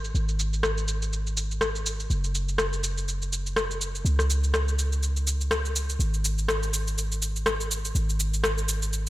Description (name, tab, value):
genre	afro house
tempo	123 BPM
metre	4/4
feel	swing 57% on 16ths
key	unclear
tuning	A4 = 440 Hz
part	warm 808-style bass	bass	0.0-9.1 s	F#1 to C#2	-26 LUFS	equal	none
part	electronic cabasa and rim click	drums	0.0-9.1 s	none	-28 LUFS	equal	low-pass filter on perc, studio reverb, low-pass filter on snare
room	light reverb, digital ambience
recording	none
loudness	-24 LUFS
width	side -16 dB against mid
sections	0.0-9.1 A section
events	none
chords	none